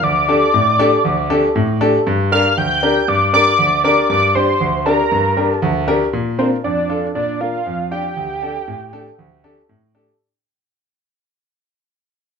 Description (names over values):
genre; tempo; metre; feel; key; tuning
pop; 118 BPM; 4/4; straight; G minor; A4 = 439 Hz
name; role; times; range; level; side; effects
fat analog lead; melody; 0.0-9.7 s; C5 to G6; -16 LUFS; equal; chorus, ping-pong delay
clear concert grand piano; accompaniment; 0.0-10.1 s; D2 to C5; -17 LUFS; left 1 dB; none
room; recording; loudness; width
wet small room reverb, RT60 0.6 s; none; -14 LUFS; side -6 dB against mid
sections
0.0-6.1 A section; 6.1-10.2 B section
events
fade-out 6.1-10.2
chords
0.0 Dsus4; 2.1 Gm; 6.1 Bb; 8.2 Dsus4